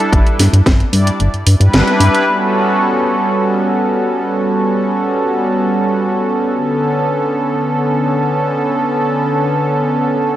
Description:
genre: nu-disco, nu disco.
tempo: free time.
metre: none.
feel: none.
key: unclear.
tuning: A4 = 439 Hz.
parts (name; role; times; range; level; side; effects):
warm analog pad; accompaniment; 0.0-10.4 s; D3 to D5; -14 LUFS; equal; chorus, cassette tape, analog delay.
house drum kit; drums; 0.0-2.2 s; hi-hat, snare drum; -17 LUFS; equal; overdrive, low-pass filter on hats, low-pass filter on snare, low-pass filter on room.
chorused synth bass; bass; 0.1-2.1 s; G1 to G2; -11 LUFS; equal; none.
electronic kick drum; drums; 0.1-0.8 s; none; -12 LUFS; equal; overdrive.
room: moderate plate reverb, RT60 1.4 s.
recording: echo-heavy mix.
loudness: -12 LUFS.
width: side -12 dB against mid.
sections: 0.0-2.3 A section; 2.3-10.4 B section.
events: kick drops out 1.2-2.3; band accent 1.7.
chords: 0.0 G6; 2.3 A13; 6.6 Bm9.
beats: free time.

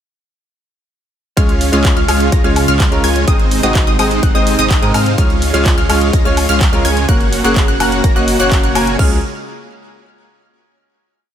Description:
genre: EDM, festival progressive house.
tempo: 126 BPM.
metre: 4/4.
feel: straight.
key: Db major.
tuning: A4 = 440 Hz.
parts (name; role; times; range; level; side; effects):
bright concert grand piano; accompaniment; 1.4-9.2 s; Ab3 to Eb5; -20 LUFS; left 1 dB; sidechain pumping, digital delay.
supersaw pad; sustained chords; 1.6-9.2 s; C3 to Gb4; -22 LUFS; right 2 dB; phaser, sidechain pumping.
wide unison pluck; arpeggios; 1.4-9.2 s; Eb6 to Bb6; -20 LUFS; equal; sidechain pumping, digital delay.
dense compressed supersaw; riff; 1.4-9.2 s; Ab3 to Bb5; -18 LUFS; right 1 dB; vintage 12-bit sampler grit, sidechain pumping, digital delay.
saturated sub bass; bass; 1.4-9.2 s; Gb1 to Ab2; -19 LUFS; equal; sidechain pumping.
big-room dance drum kit; drums; 1.4-9.1 s; crash cymbal, kick drum; -14 LUFS; equal; overdrive.
big-room dance drum kit; drums; 1.4-9.0 s; handclaps, hi-hat, woodblock; -21 LUFS; left 1 dB; none.
room: light reverb.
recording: none.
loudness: -10 LUFS.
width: side -10 dB against mid.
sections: 1.4-9.0 drop; 9.0-10.9 final chord.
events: drop 1.4-9.0.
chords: 1.4 Db; 3.3 Ab; 5.2 Db; 7.1 Gb; 9.0 Db.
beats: | 1.37 1.85 2.33 2.80 | 3.28 3.75 4.23 4.71 | 5.18 5.66 6.13 6.61 | 7.09 7.56 8.04 8.52 | 8.99.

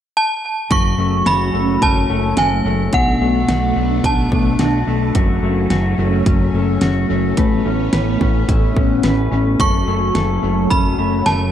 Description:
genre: dream pop.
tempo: 108 BPM.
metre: 4/4.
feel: straight.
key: F# minor.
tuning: A4 = 438 Hz.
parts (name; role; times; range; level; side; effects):
synth chime; melody; 0.2-4.8, 9.6-11.5 s; F#5 to C#6; -19 LUFS; right 1 dB; ensemble chorus, analog delay.
phased string machine; sustained chords; 0.7-11.5 s; F#3 to D4; -22 LUFS; right 1 dB; ensemble chorus, phaser.
mellow electric guitar; arpeggios; 0.7-11.5 s; F#2 to B4; -20 LUFS; left 3 dB; lush chorus, analog delay.
fat analog bass; bass; 0.7-11.5 s; F#1 to B1; -20 LUFS; equal; none.
pop drum kit; drums; 0.7-11.4 s; hi-hat, kick drum, snare drum; -19 LUFS; equal; analog delay.
room: moderate spring reverb, RT60 1.9 s.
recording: echo-heavy mix.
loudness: -14 LUFS.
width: side -10 dB against mid.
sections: 0.7-11.5 A section.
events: none.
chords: 0.0 N.C.; 0.7 F#m; 2.9 Bm7; 5.2 F#m; 7.4 Aadd9; 9.6 F#m.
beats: 0.15 | 0.71 1.26 1.82 2.37 | 2.93 3.49 4.04 4.60 | 5.15 5.71 6.26 6.82 | 7.37 7.93 8.49 9.04 | 9.60 10.15 10.71 11.26.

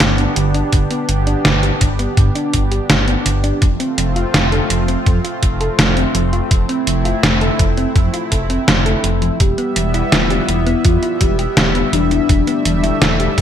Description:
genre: synthwave.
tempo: 83 BPM.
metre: 4/4.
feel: straight.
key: unclear.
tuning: A4 = 440 Hz.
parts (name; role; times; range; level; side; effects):
chorused pulse-width pad; sustained chords; 0.0-13.4 s; G3 to E5; -21 LUFS; left 1 dB; sidechain pumping.
thumb-piano-like synth pluck; arpeggios; 0.0-13.4 s; D3 to A4; -22 LUFS; right 2 dB; chorus, ping-pong delay.
dark detuned saw bass; bass; 0.0-13.4 s; E1 to G2; -19 LUFS; equal; none.
detuned 8-bit digital drum machine; drums; 0.0-13.4 s; hi-hat, snare drum; -16 LUFS; equal; gated reverb.
electronic kick drum; drums; 0.7-13.4 s; none; -14 LUFS; equal; none.
soft octave-layered synth lead; melody; 9.4-13.4 s; D4 to A4; -20 LUFS; left 3 dB; chorus, phaser, ping-pong delay.
room: light reverb.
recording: bright 1980s-style digital production.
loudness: -13 LUFS.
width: side -9 dB against mid.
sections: 0.0-13.4 A section.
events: filter sweep on synth arpeggio sound 0.0-13.4.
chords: 0.0 G; 3.6 F; 9.4 Em.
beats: 0.00 | 0.73 1.45 2.17 2.90 | 3.62 4.34 5.06 5.79 | 6.51 7.23 7.96 8.68 | 9.40 10.12 10.85 11.57 | 12.29 13.02.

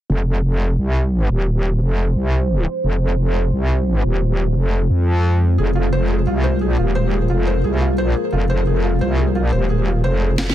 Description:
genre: dark technical drum and bass.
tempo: 175 BPM.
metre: 4/4.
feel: straight.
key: F minor.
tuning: A4 = 440 Hz.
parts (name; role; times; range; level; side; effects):
deep dark ambient pad; sustained chords; 1.3-10.5 s; Ab3 to C5; -24 LUFS; left 1 dB; chorus, built-in reverb.
metallic wobble bass; bass; 0.1-10.5 s; Eb1 to F2; -17 LUFS; equal; chorus, overdrive.
felt-muted upright piano; arpeggios; 5.6-10.5 s; F4 to C5; -25 LUFS; right 2 dB; digital delay.
electronic snare drum; drums; 10.4-10.5 s; none; -19 LUFS; equal; none.
reverse cymbal; sound effects; 10.5 s; none; -27 LUFS; right 6 dB; none.
room: little or no reverb.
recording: dense, heavily limited modern master.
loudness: -16 LUFS.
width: side -12 dB against mid.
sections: 0.1-10.5 A section.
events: drum fill 10.4; reverse cymbal 10.5.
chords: 0.1 Fm.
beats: | 0.10 0.44 0.78 1.12 | 1.47 1.81 2.15 2.50 | 2.84 3.18 3.52 3.87 | 4.21 4.55 4.90 5.24 | 5.58 5.92 6.27 6.61 | 6.95 7.30 7.64 7.98 | 8.32 8.67 9.01 9.35 | 9.70 10.04 10.38.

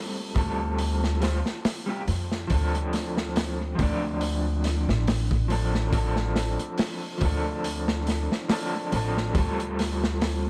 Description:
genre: trip hop.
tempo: 70 BPM.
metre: 4/4.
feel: swing 56% on 16ths.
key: D minor.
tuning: A4 = 444 Hz.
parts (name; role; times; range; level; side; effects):
electric guitar at the edge of break-up; accompaniment; 0.0-10.5 s; F3 to D5; -32 LUFS; equal; tremolo, tape echo.
upright bass; bass; 0.4-10.5 s; A1 to F2; -30 LUFS; equal; tube saturation.
crunchy breakbeat drum kit; drums; 0.4-10.4 s; hi-hat, kick drum, snare drum; -31 LUFS; equal; analog delay.
room: light reverb, small room ambience.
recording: echo-heavy mix, vinyl crackle.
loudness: -27 LUFS.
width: mono.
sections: 0.0-10.5 A section.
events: none.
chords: 0.0 Fadd9; 2.5 Dm7; 9.4 Fadd9.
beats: 0.79 1.64 | 2.50 3.36 4.21 5.07 | 5.93 6.79 7.64 8.50 | 9.36 10.21.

